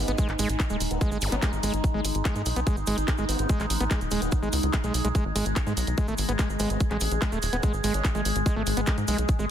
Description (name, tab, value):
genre	psychedelic trance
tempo	145 BPM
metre	4/4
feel	straight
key	G# phrygian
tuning	A4 = 441 Hz
part	formant-sweep wobble bass	second line	0.0-8.2 s	G#3 to C#4	-41 LUFS	left 2 dB	none
part	overtone-sweeping drone	sustained chords	0.0-9.5 s	G#3 to G#4	-31 LUFS	left 1 dB	chorus, built-in reverb, phaser, sidechain pumping
part	tight sequencer bass	bass	0.0-9.5 s	D#1 to G#2	-28 LUFS	equal	none
part	overdriven acid bass	riff	0.1-9.5 s	G#3 to B3	-31 LUFS	right 1 dB	auto-pan, sidechain pumping, tape echo
part	garage drum kit	drums	0.1-9.4 s	handclaps, hi-hat	-32 LUFS	equal	none
part	cabasa	percussion	0.1-9.5 s	none	-39 LUFS	right 6 dB	none
part	electronic kick drum	drums	0.2-9.4 s	none	-25 LUFS	equal	none
part	zap	sound effects	1.2-1.3 s	none	-39 LUFS	equal	none
room	light reverb, digital ambience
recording	dense, heavily limited modern master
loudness	-23 LUFS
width	side -10 dB against mid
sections	0.0-9.5 A section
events	none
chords	0.0 G#5